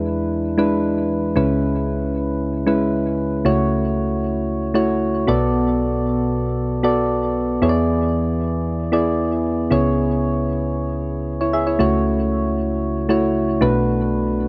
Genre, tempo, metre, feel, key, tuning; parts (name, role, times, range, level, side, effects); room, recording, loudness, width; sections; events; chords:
pop; 115 BPM; 4/4; straight; F# minor; A4 = 440 Hz
soft electric-piano-like synth keys; solo; 0.0-14.5 s; B1 to E5; -20 LUFS; equal; chorus, tape echo
little or no reverb; dry, close 1970s-style studio recording; -20 LUFS; mono
0.0-14.5 A section
0.0 E7; 1.4 C#m7; 3.4 F#m7/C#; 5.3 Bm7; 7.6 E7; 9.7 C#m7; 11.8 F#m7/C#; 13.6 Bm7